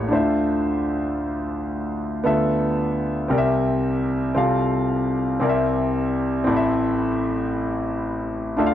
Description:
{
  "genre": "gospel",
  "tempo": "57 BPM (dotted quarters)",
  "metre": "6/8",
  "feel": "straight",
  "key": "unclear",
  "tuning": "A4 = 440 Hz",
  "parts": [
    { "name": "clear concert grand piano", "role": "solo", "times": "0.0-8.7 s", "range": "A1 to F5", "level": "-20 LUFS", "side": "equal", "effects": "none" }
  ],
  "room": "light reverb",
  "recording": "dry, close 1970s-style studio recording",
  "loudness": "-20 LUFS",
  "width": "side -11 dB against mid",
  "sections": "0.0-6.5 A section; 6.5-8.7 B section",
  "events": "none",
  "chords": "0.1 Dm9; 2.2 Dm69; 3.3 C7; 4.4 F/C; 5.4 C7; 6.5 Am",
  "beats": "| 0.12 1.18 | 2.24 3.29 | 4.35 5.41 | 6.47 7.53 | 8.58"
}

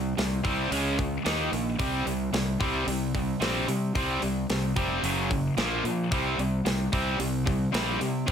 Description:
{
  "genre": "hard rock",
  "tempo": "111 BPM",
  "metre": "4/4",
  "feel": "straight",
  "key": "C minor",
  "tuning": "A4 = 440 Hz",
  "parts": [
    { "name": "biting overdriven guitar", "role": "riff", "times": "0.0-8.3 s", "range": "F#2 to Eb4", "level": "-30 LUFS", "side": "right 10 dB", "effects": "none" },
    { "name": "tight distorted guitar", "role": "riff", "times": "0.0-8.3 s", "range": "F#2 to Eb4", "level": "-30 LUFS", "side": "left 11 dB", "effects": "distortion" },
    { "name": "fuzz fingered electric bass", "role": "bass", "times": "0.0-8.3 s", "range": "F1 to C3", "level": "-32 LUFS", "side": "equal", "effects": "overdrive" },
    { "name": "tight metal drum kit", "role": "drums", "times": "0.2-8.3 s", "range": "hi-hat, kick drum, snare drum", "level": "-32 LUFS", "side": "equal", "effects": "none" }
  ],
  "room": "light reverb",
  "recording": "none",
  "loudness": "-25 LUFS",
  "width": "side -8 dB against mid",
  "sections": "0.0-8.3 A section",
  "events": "none",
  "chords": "0.0 C5; 0.7 Db5; 1.2 Eb5; 1.8 C5; 5.0 F#5; 5.6 Bb5; 6.1 C5",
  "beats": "0.17 0.71 1.25 | 1.79 2.33 2.87 3.40 | 3.94 4.48 5.02 5.56 | 6.11 6.65 7.19 7.73 | 8.27"
}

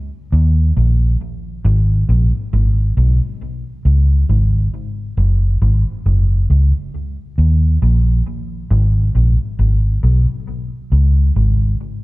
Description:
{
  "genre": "reggae",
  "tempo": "68 BPM",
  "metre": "4/4",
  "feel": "swing 56% on 16ths",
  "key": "unclear",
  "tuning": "A4 = 440 Hz",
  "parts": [
    { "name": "vintage muted fingered electric bass", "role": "solo", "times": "0.3-11.7 s", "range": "F#1 to D#2", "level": "-13 LUFS", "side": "equal", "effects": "tape echo" }
  ],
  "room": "moderate plate reverb, RT60 2.4 s",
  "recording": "echo-heavy mix",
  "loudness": "-13 LUFS",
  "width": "side -21 dB against mid",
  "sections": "0.0-3.4 A section; 3.4-12.0 B section",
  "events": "none",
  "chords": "none",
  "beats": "0.76 1.64 2.52 | 3.41 4.29 5.17 6.06 | 6.94 7.82 8.71 9.59 | 10.47 11.36"
}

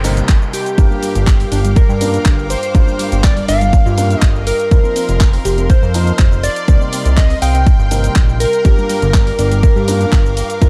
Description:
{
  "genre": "progressive house",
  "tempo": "122 BPM",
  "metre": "4/4",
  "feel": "straight",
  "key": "G minor",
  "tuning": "A4 = 440 Hz",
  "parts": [
    { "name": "mellow electric guitar", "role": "melody", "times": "0.0-10.7 s", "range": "G4 to G5", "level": "-23 LUFS", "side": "equal", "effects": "digital delay" },
    { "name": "soft supersaw", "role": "second line", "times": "0.0-10.7 s", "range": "G4 to G5", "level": "-28 LUFS", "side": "equal", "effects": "sidechain pumping, digital delay" },
    { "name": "clear studio string section", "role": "sustained chords", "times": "0.0-10.7 s", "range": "Eb4 to D6", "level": "-31 LUFS", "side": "equal", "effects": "sidechain pumping" },
    { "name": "soft round pluck", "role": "arpeggios", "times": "0.0-10.7 s", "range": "G3 to G5", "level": "-27 LUFS", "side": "equal", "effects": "chorus, cassette tape, sidechain pumping, digital delay" },
    { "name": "warm baby grand piano", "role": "stabs", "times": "0.0-10.7 s", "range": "G2 to Bb4", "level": "-26 LUFS", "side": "equal", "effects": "sidechain pumping, digital delay" },
    { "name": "fat analog bass", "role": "bass", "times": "0.0-10.7 s", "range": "F1 to G2", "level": "-18 LUFS", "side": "equal", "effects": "sidechain pumping" },
    { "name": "house drum kit", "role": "drums", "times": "0.0-10.7 s", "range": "handclaps, hi-hat, ride cymbal, shaker", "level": "-27 LUFS", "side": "equal", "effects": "none" },
    { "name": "noise sweep", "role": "sound effects", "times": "0.0-0.8 s", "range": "none", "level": "-32 LUFS", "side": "equal", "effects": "none" },
    { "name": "drifting glass-harmonics texture", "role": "texture", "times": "0.0-10.7 s", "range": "F5 to G5", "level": "-36 LUFS", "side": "equal", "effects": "none" },
    { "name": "electronic kick drum", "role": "drums", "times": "0.3-10.7 s", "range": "none", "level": "-13 LUFS", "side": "equal", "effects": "none" }
  ],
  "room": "digital ambience",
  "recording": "dark, warm production",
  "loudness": "-13 LUFS",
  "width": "mono",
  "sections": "0.0-10.7 A section",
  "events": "noise sweep 0.0-0.8",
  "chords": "0.0 Cm7; 0.8 Gm7; 4.7 F7sus4; 6.7 Cm7; 8.6 Gm7",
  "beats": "0.29 | 0.78 1.27 1.76 2.25 | 2.75 3.24 3.73 4.22 | 4.71 5.21 5.70 6.19 | 6.68 7.17 7.67 8.16 | 8.65 9.14 9.63 10.12 | 10.62"
}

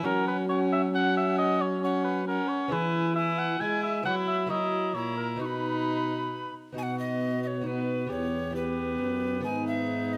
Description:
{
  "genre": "classical, renaissance-style consort dance",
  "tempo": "134 BPM",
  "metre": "3/4",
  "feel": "straight",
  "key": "B major",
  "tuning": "A4 = 445 Hz",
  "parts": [
    { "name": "alto recorder", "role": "melody", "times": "0.0-10.2 s", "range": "B4 to C#6", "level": "-37 LUFS", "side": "equal", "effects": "none" },
    { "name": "lute", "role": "accompaniment", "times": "0.0-10.2 s", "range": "E2 to G#4", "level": "-40 LUFS", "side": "equal", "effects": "none" },
    { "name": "warm viola", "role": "accompaniment", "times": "0.0-10.2 s", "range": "B3 to E4", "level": "-34 LUFS", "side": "equal", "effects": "none" },
    { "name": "mellow trombone", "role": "bass", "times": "0.0-10.2 s", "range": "E2 to G#3", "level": "-34 LUFS", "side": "equal", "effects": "none" },
    { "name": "mellow cor anglais", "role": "second line", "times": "0.1-10.2 s", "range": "D#4 to G#5", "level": "-34 LUFS", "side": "equal", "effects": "none" }
  ],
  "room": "moderate recital hall reverb, RT60 1.5 s",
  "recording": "close, detailed microphones",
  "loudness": "-29 LUFS",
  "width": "mono",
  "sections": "0.0-6.8 A section; 6.8-10.2 B section",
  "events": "none",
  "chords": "0.0 F#5; 2.7 E; 4.1 F#7sus4; 4.5 F#7; 5.4 B; 8.1 Em; 9.4 G#m",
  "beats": "| 0.05 0.49 0.94 | 1.38 1.82 2.27 | 2.71 3.16 3.60 | 4.05 4.50 4.95 | 5.40 5.86 6.31 | 6.76 7.21 7.66 | 8.11 8.55 9.00 | 9.45 9.89"
}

